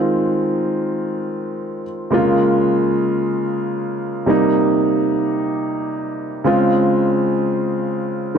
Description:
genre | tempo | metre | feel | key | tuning
disco | free time | none | none | unclear | A4 = 441 Hz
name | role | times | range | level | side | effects
warm grand piano | solo | 0.0-8.4 s | C3 to F4 | -16 LUFS | equal | none
room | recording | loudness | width
moderate plate reverb, RT60 3.2 s | dark, warm production | -16 LUFS | side -7 dB against mid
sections
0.0-8.4 A section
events
none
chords
0.0 Fm7; 2.1 Bbm7; 4.3 Cm7; 6.5 Dbmaj7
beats
free time

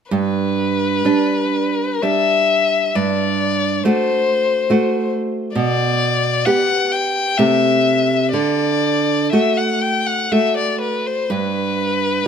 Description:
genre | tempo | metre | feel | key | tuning
romantic duo for violin and classical guitar | 59-71 BPM | 3/4 | rubato | G major | A4 = 440 Hz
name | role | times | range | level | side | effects
warm violin | melody | 0.1-12.3 s | B4 to G5 | -18 LUFS | left 5 dB | none
nylon-string guitar | accompaniment | 0.1-12.2 s | G2 to G4 | -18 LUFS | right 3 dB | none
room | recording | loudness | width
light reverb | none | -15 LUFS | side -7 dB against mid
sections
0.1-12.3 A section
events
none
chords
0.1 G; 3.0 F#dim/G; 5.6 G/B; 7.4 Am7/C; 8.3 D; 11.3 N.C.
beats
| 0.12 1.05 2.04 | 2.96 3.85 4.70 | 5.56 6.46 7.38 | 8.34 9.33 10.31 | 11.30 12.26

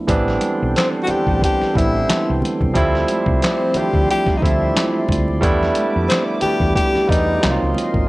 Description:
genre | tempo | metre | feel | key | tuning
R&B, neo-soul | 90 BPM | 4/4 | swing 56% on 16ths | A minor | A4 = 439 Hz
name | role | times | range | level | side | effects
barky tine electric piano | accompaniment | 0.0-8.1 s | E3 to D5 | -19 LUFS | right 2 dB | none
chorused pulse-width pad | sustained chords | 0.1-8.1 s | F3 to D6 | -30 LUFS | left 1 dB | none
woody fretless electric bass | bass | 0.1-8.1 s | G#1 to F2 | -21 LUFS | equal | none
dusty soul sampler-style drum kit | drums | 0.1-8.1 s | handclaps, hi-hat, kick drum, snare drum | -21 LUFS | equal | none
congas | percussion | 0.4-8.1 s | none | -31 LUFS | left 1 dB | none
breathy tenor saxophone | melody | 0.8-7.8 s | C4 to G4 | -20 LUFS | left 2 dB | tape echo
room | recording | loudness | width
little or no reverb | worn, warbling old tape, cassette tape, warbly pitch drift | -15 LUFS | side -20 dB against mid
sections
0.1-8.1 A section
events
none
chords
0.1 Am9; 2.8 Dm9; 5.4 Em7; 7.4 Cm7b5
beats
| 0.08 0.75 1.42 2.08 | 2.75 3.42 4.08 4.75 | 5.42 6.08 6.75 7.42 | 8.08

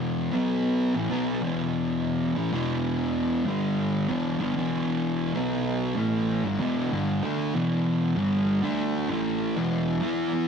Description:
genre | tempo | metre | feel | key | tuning
metal | 96 BPM | 4/4 | straight | E minor | A4 = 443 Hz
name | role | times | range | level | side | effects
fuzz guitar | solo | 0.0-10.5 s | E2 to E4 | -24 LUFS | equal | distortion, tape echo
room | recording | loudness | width
light reverb, digital ambience | dark, warm production | -24 LUFS | side -6 dB against mid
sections
0.0-7.5 A section; 7.5-10.5 B section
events
none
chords
0.3 B5; 1.0 E5; 3.5 G5; 4.1 E5; 5.3 B5; 6.0 Em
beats
| 0.03 0.65 1.28 1.90 | 2.52 3.15 3.77 4.40 | 5.03 5.65 6.28 6.90 | 7.53 8.15 8.78 9.40 | 10.03

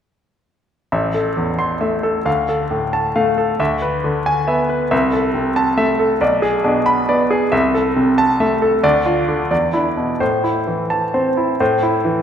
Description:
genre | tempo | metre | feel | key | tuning
classical, virtuoso piano study | 90 BPM (dotted quarters) | 6/8 | rubato | A minor | A4 = 440 Hz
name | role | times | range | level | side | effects
clear grand piano | solo | 0.9-12.2 s | A1 to C6 | -15 LUFS | equal | none
room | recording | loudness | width
wet recital hall reverb, RT60 1.8 s | none | -15 LUFS | side -8 dB against mid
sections
0.9-11.6 A section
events
none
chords
0.9 Am; 2.3 Dm; 3.6 E7/D; 4.9 Am/C; 6.2 G#dim/B; 7.5 Am/C; 8.8 Dm; 9.5 E5; 10.2 Am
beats
| 0.92 1.59 | 2.27 2.93 | 3.60 4.26 | 4.92 5.56 | 6.21 6.87 | 7.52 8.17 | 8.84 9.51 | 10.21 10.90 | 11.60

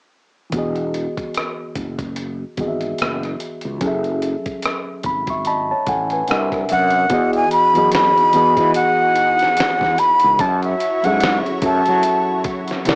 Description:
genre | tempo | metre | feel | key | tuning
R&B, neo-soul | 73 BPM | 4/4 | swing 57% on 16ths | E major | A4 = 437 Hz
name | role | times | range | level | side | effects
reed electric piano | accompaniment | 0.5-13.0 s | C3 to C#6 | -21 LUFS | equal | cassette tape
fretless electric bass | bass | 0.5-13.0 s | E1 to F#3 | -24 LUFS | equal | none
dusty soul sampler-style drum kit | drums | 0.5-13.0 s | hi-hat, kick drum, rim click, snare drum | -24 LUFS | equal | none
breathy jazz flute | melody | 6.7-12.4 s | E5 to B5 | -14 LUFS | equal | cassette tape
lush unison pad | sustained chords | 7.1-13.0 s | C3 to C#5 | -26 LUFS | equal | chorus, cassette tape
room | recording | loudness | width
light reverb | home recording on cassette, small speaker sound | -15 LUFS | side -35 dB against mid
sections
0.5-7.1 A section; 7.1-13.0 B section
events
reed electric piano fill 4.6-7.1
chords
0.5 Emaj9; 3.8 F#m9; 6.3 C9; 7.1 Emaj9; 10.4 F#m9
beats
| 0.53 1.35 2.17 3.00 | 3.82 4.64 5.46 6.28 | 7.11 7.93 8.75 9.57 | 10.39 11.21 12.04 12.86

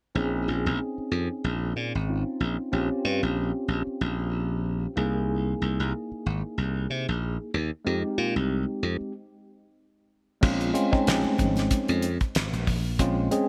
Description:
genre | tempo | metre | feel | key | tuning
electric jazz fusion | 94 BPM | 4/4 | swing 56% on 16ths | Bb dorian, Bb minor from 10.4 s | A4 = 440 Hz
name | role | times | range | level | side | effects
tine electric piano | accompaniment | 0.1-13.5 s | Ab3 to Ab4 | -31 LUFS | equal | none
glassy slap bass | bass | 0.2-13.3 s | Ab1 to C3 | -29 LUFS | equal | none
damped 70s drum kit | drums | 10.4-13.5 s | crash cymbal, hi-hat, kick drum, snare drum | -29 LUFS | equal | gated reverb
congas | percussion | 10.7-13.5 s | none | -37 LUFS | equal | none
room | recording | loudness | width
moderate lush hall reverb, RT60 2.3 s | bright 1980s-style digital production | -27 LUFS | mono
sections
0.2-10.4 A section; 10.4-13.5 B section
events
stop 9.1-10.4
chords
0.2 Bbm11; 2.7 Bbm69; 5.0 C7alt; 7.9 Fm7; 10.4 Bbm9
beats
| 0.16 0.80 1.44 2.08 | 2.73 3.37 4.01 4.65 | 5.29 5.93 6.58 7.22 | 7.86 8.50 9.14 9.79 | 10.43 11.07 11.71 12.35 | 12.99

